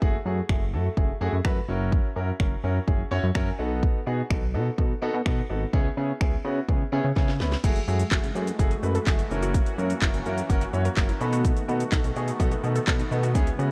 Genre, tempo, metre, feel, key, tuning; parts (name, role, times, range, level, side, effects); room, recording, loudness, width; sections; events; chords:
dance-pop; 126 BPM; 4/4; straight; A4 = 440 Hz
warm concert grand piano; accompaniment; 0.0-13.7 s; A3 to B5; -33 LUFS; equal; sidechain pumping
chorused synth bass; bass; 0.0-13.7 s; F#1 to C#3; -29 LUFS; equal; sidechain pumping
house drum kit; drums; 0.0-13.7 s; crash cymbal, finger snaps, handclaps, hi-hat, kick drum, shaker, snare drum; -27 LUFS; equal
sweeping resonant pad; sustained chords; 7.6-13.7 s; C#3 to F#4; -37 LUFS; equal; chorus, sidechain pumping
unison pluck; arpeggios; 7.6-13.7 s; G#3 to A#4; -39 LUFS; equal
little or no reverb; worn, warbling old tape, cassette tape, warbly pitch drift; -25 LUFS; mono
0.0-7.6 A section; 7.6-13.7 B section
grand piano fill 3.1-3.8, 10.0-11.4; drum fill 7.2-7.6
0.0 F#m9; 1.7 F#7; 3.6 B7; 5.7 C#m7; 7.6 F#m9; 9.3 F#7; 11.2 B7